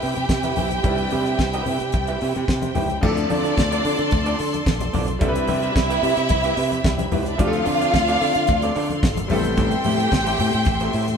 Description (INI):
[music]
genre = disco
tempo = 110 BPM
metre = 4/4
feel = straight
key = D dorian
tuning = A4 = 440 Hz
[part]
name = dark studio violin section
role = second line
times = 0.0-11.2 s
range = B3 to G5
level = -24 LUFS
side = equal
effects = none
[part]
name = clear concert grand piano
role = accompaniment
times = 0.0-11.2 s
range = F3 to G5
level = -28 LUFS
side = left 2 dB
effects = none
[part]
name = electric guitar through a small old amp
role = accompaniment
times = 0.0-11.1 s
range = A3 to E5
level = -28 LUFS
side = right 3 dB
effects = none
[part]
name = clear studio string section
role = sustained chords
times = 0.0-11.2 s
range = C4 to C6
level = -30 LUFS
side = equal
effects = none
[part]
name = modern bright fingered electric bass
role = bass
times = 0.0-11.1 s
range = G#1 to D3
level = -25 LUFS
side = equal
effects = none
[part]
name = damped 70s drum kit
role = drums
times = 0.0-11.2 s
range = crash cymbal, hi-hat, kick drum, snare drum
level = -24 LUFS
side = equal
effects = none
[part]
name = congas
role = percussion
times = 0.2-11.2 s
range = none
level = -30 LUFS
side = left 4 dB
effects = none
[sound]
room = wet studio reverb, RT60 0.9 s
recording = band playing live in one room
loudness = -18 LUFS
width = side -6 dB against mid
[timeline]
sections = 0.0-3.0 A section; 3.0-11.2 B section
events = grand piano fill 2.2-3.0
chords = 0.0 Cmaj7; 3.0 Dm7; 5.2 Cmaj7; 7.4 Dm7; 9.3 Am7